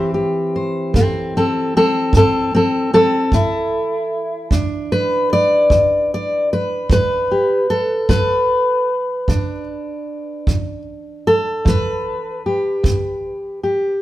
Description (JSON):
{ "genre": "acoustic country blues, solo or duo", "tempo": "50 BPM (dotted quarters)", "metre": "12/8", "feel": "straight", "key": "E minor", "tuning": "A4 = 444 Hz", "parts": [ { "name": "fingerpicked steel-string acoustic guitar", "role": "melody", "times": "0.0-14.0 s", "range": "E2 to D5", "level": "-16 LUFS", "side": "equal", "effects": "none" }, { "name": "kick drum", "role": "drums", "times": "0.9-13.0 s", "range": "none", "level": "-18 LUFS", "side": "right 1 dB", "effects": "none" } ], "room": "moderate studio reverb, RT60 1.0 s", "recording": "band playing live in one room", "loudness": "-15 LUFS", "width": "side -15 dB against mid", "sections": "0.0-14.0 A section", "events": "none", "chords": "0.0 Am7; 4.5 Em7", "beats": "0.94 2.13 3.32 | 4.51 5.71 6.90 8.09 | 9.28 10.46 11.65 12.84" }